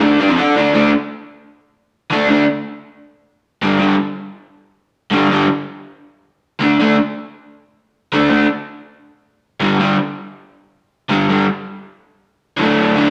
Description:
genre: rock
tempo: free time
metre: none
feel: none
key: D major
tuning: A4 = 439 Hz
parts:
  - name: crunchy overdriven guitar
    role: solo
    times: 0.0-13.1 s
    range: G2 to D5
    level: -16 LUFS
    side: equal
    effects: none
room: wet stone room reverb, RT60 1.3 s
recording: rough rehearsal-room recording, tube saturation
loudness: -16 LUFS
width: mono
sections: 0.6-12.6 A section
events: none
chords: 0.0 D5; 3.6 G5; 6.6 D5; 9.6 G5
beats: free time

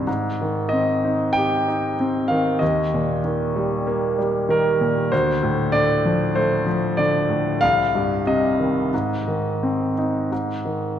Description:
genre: classical, lyrical solo piano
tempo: 84-98 BPM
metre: 4/4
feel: rubato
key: Ab lydian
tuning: A4 = 443 Hz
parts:
  - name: clear grand piano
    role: solo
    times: 0.0-11.0 s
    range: C2 to G5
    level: -19 LUFS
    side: equal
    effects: none
room: wet concert hall reverb, RT60 2.5 s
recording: dark, warm production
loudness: -18 LUFS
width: side -10 dB against mid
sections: 0.0-10.3 A section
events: none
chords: 0.1 Abmaj7; 2.6 Eb; 5.1 Dm7; 7.6 Cm; 8.9 Ab; 10.3 Ab5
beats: | 0.07 0.73 1.36 1.99 | 2.61 3.25 3.88 4.50 | 5.12 5.74 6.36 6.99 | 7.63 8.27 8.93 9.62 | 10.31 10.99

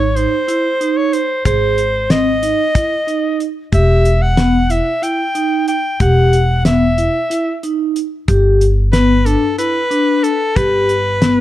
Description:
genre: progressive instrumental, band music in an uneven meter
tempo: 184 BPM (eighths)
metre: 7/8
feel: straight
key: unclear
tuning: A4 = 441 Hz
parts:
  - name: breathy soprano saxophone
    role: melody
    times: 0.0-11.4 s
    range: A4 to G5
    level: -17 LUFS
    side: left 1 dB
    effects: plate reverb
  - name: upright bass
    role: bass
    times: 0.0-11.4 s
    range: E1 to G#1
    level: -16 LUFS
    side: equal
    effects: none
  - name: vibraphone with medium mallets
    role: arpeggios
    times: 0.2-11.4 s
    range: B3 to G#4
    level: -17 LUFS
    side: equal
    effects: none
  - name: damped 70s drum kit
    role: drums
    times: 0.2-11.4 s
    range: hi-hat, kick drum, snare drum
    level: -18 LUFS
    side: left 1 dB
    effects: none
room: light reverb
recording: dark, warm production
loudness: -12 LUFS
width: side -13 dB against mid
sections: 0.0-11.4 A section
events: none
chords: 0.0 G#; 3.7 Em; 8.3 G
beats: 0.16 0.48 0.81 1.13 | 1.46 1.78 2.10 2.43 2.75 3.08 3.40 | 3.73 4.05 4.38 4.70 5.03 5.35 5.68 | 6.00 6.33 6.65 6.98 7.30 7.63 7.96 | 8.28 8.61 8.93 9.26 9.58 9.91 10.23 | 10.56 10.89 11.21

